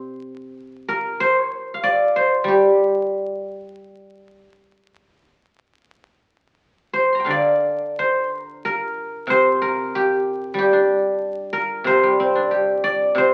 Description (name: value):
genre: chinese traditional, Chinese solo plucked strings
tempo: 79-98 BPM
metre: 4/4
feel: rubato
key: G yu mode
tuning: A4 = 440 Hz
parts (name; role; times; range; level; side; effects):
- guzheng; solo; 0.0-13.3 s; C3 to C6; -20 LUFS; equal; none
room: moderate large studio reverb, RT60 1.1 s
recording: very old 78 rpm record, vinyl crackle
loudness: -20 LUFS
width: mono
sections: 0.0-6.6 A section; 6.6-13.3 B section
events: none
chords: none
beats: 0.54 | 1.18 1.80 2.46 3.11 | 3.77 4.43 5.12 5.85 | 6.57 7.27 7.96 8.63 | 9.28 9.94 10.58 11.22 | 11.86 12.51 13.16